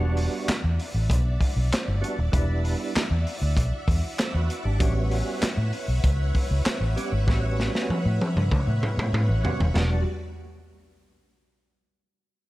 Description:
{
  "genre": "funk",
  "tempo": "97 BPM",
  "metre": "4/4",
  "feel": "straight",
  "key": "E dorian",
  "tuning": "A4 = 437 Hz",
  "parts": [
    { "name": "string machine, full ensemble", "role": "sustained chords", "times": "0.0-10.0 s", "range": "G3 to F#5", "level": "-35 LUFS", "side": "equal", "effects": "ensemble chorus" },
    { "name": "percussive tonewheel organ", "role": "stabs", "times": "0.0-10.0 s", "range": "G3 to D5", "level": "-32 LUFS", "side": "right 3 dB", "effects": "overdrive, chorus vibrato, slow rotary speaker" },
    { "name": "vintage muted fingered electric bass", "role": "bass", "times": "0.0-10.0 s", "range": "D#1 to A2", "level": "-24 LUFS", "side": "equal", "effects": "none" },
    { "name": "crunchy breakbeat drum kit", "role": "drums", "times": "0.2-9.9 s", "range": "crash cymbal, handclaps, hi-hat, kick drum, snare drum, toms", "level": "-26 LUFS", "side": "equal", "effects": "none" }
  ],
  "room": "small room ambience",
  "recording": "none",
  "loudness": "-22 LUFS",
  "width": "side -18 dB against mid",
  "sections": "0.0-9.7 A section; 9.7-12.2 B section",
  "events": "drum fill 7.3-9.7",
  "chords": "0.0 Em9; 4.8 A13; 9.7 Em9 (rootless)"
}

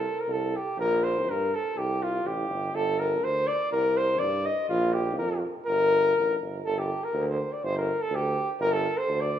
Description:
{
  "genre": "balkan folk",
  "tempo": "123 BPM",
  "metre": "2/4",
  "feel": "swing 53% on 16ths",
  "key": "G minor",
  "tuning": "A4 = 440 Hz",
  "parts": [
    { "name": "warm flugelhorn", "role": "melody", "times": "0.0-9.4 s", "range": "F4 to Eb5", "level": "-25 LUFS", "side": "left 1 dB", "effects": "none" },
    { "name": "clear tuba", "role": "bass", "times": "0.0-9.3 s", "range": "G1 to G2", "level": "-30 LUFS", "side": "right 1 dB", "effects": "none" }
  ],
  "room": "wet recital hall reverb, RT60 1.7 s",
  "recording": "minimal, uncompressed stereo recording",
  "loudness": "-24 LUFS",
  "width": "side -10 dB against mid",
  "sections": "0.0-6.6 A section; 6.6-9.4 B section",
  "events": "none",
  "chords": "0.0 Am7; 0.8 Gmadd9/Bb; 1.8 C5; 2.7 G5; 3.7 C5; 4.7 Bb5; 5.7 Gm; 6.6 G5"
}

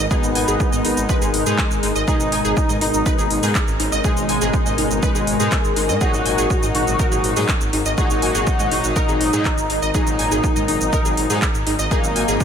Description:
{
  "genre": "melodic techno",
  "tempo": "122 BPM",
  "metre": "4/4",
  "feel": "straight",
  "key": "G# minor",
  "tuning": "A4 = 439 Hz",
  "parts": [
    { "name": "deep dark ambient pad", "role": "sustained chords", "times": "0.0-12.4 s", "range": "G#3 to D#5", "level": "-28 LUFS", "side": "left 3 dB", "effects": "chorus, built-in reverb, sidechain pumping" },
    { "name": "wide unison pluck", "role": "arpeggios", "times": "0.0-12.4 s", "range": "D#4 to G#5", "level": "-25 LUFS", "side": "equal", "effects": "sidechain pumping, ping-pong delay" },
    { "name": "swelling detuned saw bass", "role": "bass", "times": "0.0-12.4 s", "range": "G#1 to G#2", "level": "-25 LUFS", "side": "equal", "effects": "tube saturation, sidechain pumping" },
    { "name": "wide unison lead", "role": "melody", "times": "0.1-12.4 s", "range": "G#3 to F#4", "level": "-23 LUFS", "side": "equal", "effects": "ensemble chorus, sidechain pumping, analog delay" },
    { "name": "analog synth brass", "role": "stabs", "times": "0.1-12.4 s", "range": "A#2 to D#4", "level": "-26 LUFS", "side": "left 3 dB", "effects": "chorus, sidechain pumping, ping-pong delay" },
    { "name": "electronic kick drum", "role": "drums", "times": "0.1-12.4 s", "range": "none", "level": "-21 LUFS", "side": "equal", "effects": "none" },
    { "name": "techno drum kit", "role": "drums", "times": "0.1-12.4 s", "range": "handclaps, hi-hat, shaker", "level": "-25 LUFS", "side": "right 1 dB", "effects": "sidechain pumping on perc, sidechain pumping on hats, sidechain pumping on cymbals" }
  ],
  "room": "moderate lush hall reverb, RT60 1.8 s, digital ambience",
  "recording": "dreamy mix soaked in reverb",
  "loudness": "-16 LUFS",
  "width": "side -8 dB against mid",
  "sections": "0.0-12.4 A section",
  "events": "none",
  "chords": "0.0 G#m; 6.0 D#m/G#"
}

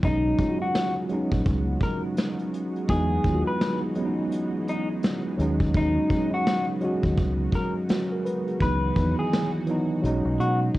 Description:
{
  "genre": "lo-fi hip hop",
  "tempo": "84 BPM",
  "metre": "4/4",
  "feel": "swing 60% on 16ths",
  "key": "B major",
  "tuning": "A4 = 436 Hz",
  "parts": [
    { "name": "electric guitar through a small old amp", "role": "melody", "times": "0.0-10.6 s", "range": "D#4 to B4", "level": "-28 LUFS", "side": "left 2 dB", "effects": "low-pass filter, cassette tape" },
    { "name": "mellow tine electric piano", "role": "accompaniment", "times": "0.0-10.8 s", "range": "D#3 to B4", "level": "-26 LUFS", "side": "right 1 dB", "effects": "medium stereo tremolo, low-pass filter, cassette tape" },
    { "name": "lush unison pad", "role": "sustained chords", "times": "0.0-10.8 s", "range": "C#3 to F#4", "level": "-36 LUFS", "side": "equal", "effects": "chorus, low-pass filter, cassette tape" },
    { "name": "deep dub fingered electric bass", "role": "bass", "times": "0.0-10.7 s", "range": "A#1 to B2", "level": "-26 LUFS", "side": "equal", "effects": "none" },
    { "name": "vintage brush drum kit", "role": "drums", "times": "0.0-10.8 s", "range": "hi-hat, kick drum, snare drum", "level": "-27 LUFS", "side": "equal", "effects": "cassette tape" }
  ],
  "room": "light reverb",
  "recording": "home recording on cassette",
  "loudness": "-22 LUFS",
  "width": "side -17 dB against mid",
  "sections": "0.0-10.8 A section",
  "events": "none",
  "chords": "0.0 B69; 2.9 Emaj9; 5.4 B69/D#; 8.6 C#m11; 10.0 B69"
}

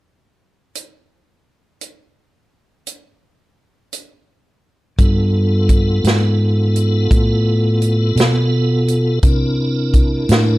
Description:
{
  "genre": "slow blues",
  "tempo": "57 BPM (dotted quarters)",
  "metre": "12/8",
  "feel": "straight",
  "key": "G mixolydian",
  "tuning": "A4 = 440 Hz",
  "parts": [
    { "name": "natural country drum kit", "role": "drums", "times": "0.8-10.5 s", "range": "hi-hat, kick drum, snare drum", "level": "-15 LUFS", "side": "equal", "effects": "none" },
    { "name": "tonewheel organ", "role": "sustained chords", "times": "5.0-10.6 s", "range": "B3 to Bb4", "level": "-20 LUFS", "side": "equal", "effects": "slow rotary speaker, chorus vibrato" },
    { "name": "fingered electric bass", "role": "bass", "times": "5.0-10.6 s", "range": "G2 to C3", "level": "-15 LUFS", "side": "equal", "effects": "none" }
  ],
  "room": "little or no reverb",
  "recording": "dark, warm production",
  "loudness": "-13 LUFS",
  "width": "side -19 dB against mid",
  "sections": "0.7-5.0 A section; 5.0-10.6 B section",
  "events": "none",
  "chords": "0.7 N.C.; 5.0 G7; 9.2 C7"
}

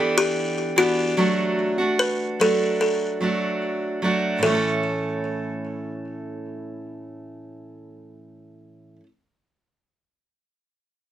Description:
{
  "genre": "acoustic pop",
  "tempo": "74 BPM",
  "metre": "4/4",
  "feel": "straight",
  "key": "A mixolydian",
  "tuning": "A4 = 440 Hz",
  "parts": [
    { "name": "buzzing kalimba", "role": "melody", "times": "0.0-9.0 s", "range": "F#4 to B4", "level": "-23 LUFS", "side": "left 1 dB", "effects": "digital delay" },
    { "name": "fingerpicked steel-string acoustic guitar", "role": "accompaniment", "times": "0.0-9.1 s", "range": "A2 to A4", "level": "-24 LUFS", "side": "right 2 dB", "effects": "none" }
  ],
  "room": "light reverb",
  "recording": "none",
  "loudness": "-20 LUFS",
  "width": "side -11 dB against mid",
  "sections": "0.0-4.4 A section; 4.4-7.7 B section",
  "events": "none",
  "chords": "0.0 Em7; 1.2 D/F#; 4.4 A"
}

